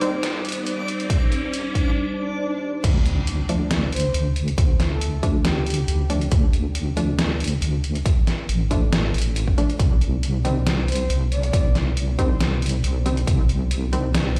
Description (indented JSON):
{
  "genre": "deep dubstep",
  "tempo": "138 BPM",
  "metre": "4/4",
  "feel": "swing 53% on 16ths, half-time",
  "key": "D phrygian",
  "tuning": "A4 = 435 Hz",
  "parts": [
    { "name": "dark analog pad", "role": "sustained chords", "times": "0.0-2.8 s", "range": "G3 to C5", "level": "-31 LUFS", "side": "equal", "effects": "chorus" },
    { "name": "filtered dub chord stab", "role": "stabs", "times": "0.0-0.1, 3.5-14.1 s", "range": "Eb3 to D4", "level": "-31 LUFS", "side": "equal", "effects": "chorus, cassette tape, dub echo" },
    { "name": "deep soft wobble bass", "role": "bass", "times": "0.0-14.4 s", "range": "A1 to Eb2", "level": "-25 LUFS", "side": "equal", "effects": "chorus, high-pass filter" },
    { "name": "trip hop sampler-style drum kit", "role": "drums", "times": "0.0-14.4 s", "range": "crash cymbal, hi-hat, snare drum", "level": "-29 LUFS", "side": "equal", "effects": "overdrive, high-pass filter on hats, high-pass filter on snare, high-pass filter on cymbals" },
    { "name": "riser, swell and impact", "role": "sound effects", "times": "0.0-4.6 s", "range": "none", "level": "-32 LUFS", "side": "equal", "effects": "none" },
    { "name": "backwards swelling texture", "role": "texture", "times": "0.0-2.0 s", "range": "D5", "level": "-36 LUFS", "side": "equal", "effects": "built-in reverb" },
    { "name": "electronic kick drum", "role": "drums", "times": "1.1-13.4 s", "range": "none", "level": "-22 LUFS", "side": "equal", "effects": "none" },
    { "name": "breathy flute-like synth lead", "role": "melody", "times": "3.9-6.1, 10.9-12.4 s", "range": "G4 to D5", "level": "-35 LUFS", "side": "equal", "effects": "subtle chorus, dub echo" }
  ],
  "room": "light reverb",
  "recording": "played on a big sound system in a bare room, stone room reverb",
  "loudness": "-22 LUFS",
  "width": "mono",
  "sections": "0.0-2.8 A section; 2.8-14.4 B section",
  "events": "build-up 0.0-2.8; riser 0.0-2.0; break 2.0-2.8; swell 2.0-2.8; drop 2.8-14.4; impact 2.8-4.6",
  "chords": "0.0 Cm; 2.8 Dm; 9.8 Cm"
}